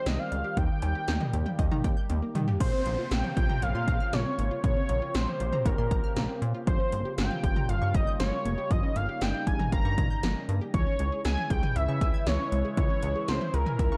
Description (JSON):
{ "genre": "synth-pop", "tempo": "118 BPM", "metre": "4/4", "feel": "straight", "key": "unclear", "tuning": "A4 = 440 Hz", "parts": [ { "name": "octave-doubled lead", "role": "melody", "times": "0.0-14.0 s", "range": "Bb4 to Bb5", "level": "-35 LUFS", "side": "equal", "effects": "chorus, digital delay" }, { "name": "sweeping resonant pad", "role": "sustained chords", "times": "0.0-14.0 s", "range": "C3 to G4", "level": "-41 LUFS", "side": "equal", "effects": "chorus, phaser" }, { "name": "unison pluck", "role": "arpeggios", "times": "0.1-14.0 s", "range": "Db3 to Ab6", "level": "-40 LUFS", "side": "equal", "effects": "digital delay" }, { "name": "chorused synth bass", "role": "bass", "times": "0.1-14.0 s", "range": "F1 to Eb3", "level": "-32 LUFS", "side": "equal", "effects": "none" }, { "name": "80s electronic pad drums", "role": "drums", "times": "0.1-13.9 s", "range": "cowbell, crash cymbal, hi-hat, kick drum, snare drum, toms", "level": "-31 LUFS", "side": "equal", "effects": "gated reverb on snare and toms" }, { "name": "downlifter", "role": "sound effects", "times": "2.6-6.7 s", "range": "none", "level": "-48 LUFS", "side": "equal", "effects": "none" } ], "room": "light reverb, digital ambience", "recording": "dark, warm production", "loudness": "-28 LUFS", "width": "mono", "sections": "0.0-2.6 A section; 2.6-14.0 B section", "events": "drum fill 2.1-2.6", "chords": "0.0 Cm; 0.6 Eb; 2.6 Bbmadd9; 6.7 Gm7b5; 10.7 Dbm", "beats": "0.06 | 0.57 1.08 1.59 2.10 | 2.60 3.11 3.62 4.13 | 4.64 5.15 5.66 6.16 | 6.67 7.18 7.69 8.20 | 8.71 9.21 9.72 10.23 | 10.74 11.25 11.76 12.27 | 12.77 13.28 13.79" }